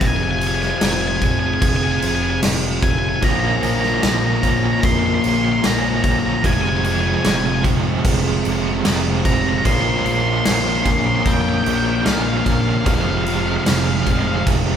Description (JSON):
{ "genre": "post-rock", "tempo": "75 BPM", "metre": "4/4", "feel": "straight", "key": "unclear", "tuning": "A4 = 440 Hz", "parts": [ { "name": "octave-fuzz lead guitar", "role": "melody", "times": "0.0-14.4 s", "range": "F5 to C6", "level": "-22 LUFS", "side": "equal", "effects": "distortion" }, { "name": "dark studio string section", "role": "sustained chords", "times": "0.0-14.8 s", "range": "F3 to Bb4", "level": "-33 LUFS", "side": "right 2 dB", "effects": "none" }, { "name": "fuzz guitar", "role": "riff", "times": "0.0-14.8 s", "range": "F2 to Bb3", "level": "-23 LUFS", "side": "left 5 dB", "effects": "distortion" }, { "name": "growling picked electric bass", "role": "bass", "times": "0.0-14.8 s", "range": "F1 to F2", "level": "-24 LUFS", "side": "right 1 dB", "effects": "overdrive" }, { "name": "big rock drum kit", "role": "drums", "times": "0.0-14.7 s", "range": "crash cymbal, kick drum, snare drum", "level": "-20 LUFS", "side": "equal", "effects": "none" }, { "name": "overdriven electric guitar", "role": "riff", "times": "3.2-14.8 s", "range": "F2 to Db4", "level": "-23 LUFS", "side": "right 5 dB", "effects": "tremolo" } ], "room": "wet large studio reverb, RT60 1.2 s", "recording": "band playing live in one room", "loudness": "-15 LUFS", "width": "side -8 dB against mid", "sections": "0.0-14.8 A section", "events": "none", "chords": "0.0 Fm; 3.2 Bbmadd9; 6.4 Fm; 9.7 Bbmadd9; 12.9 Fm" }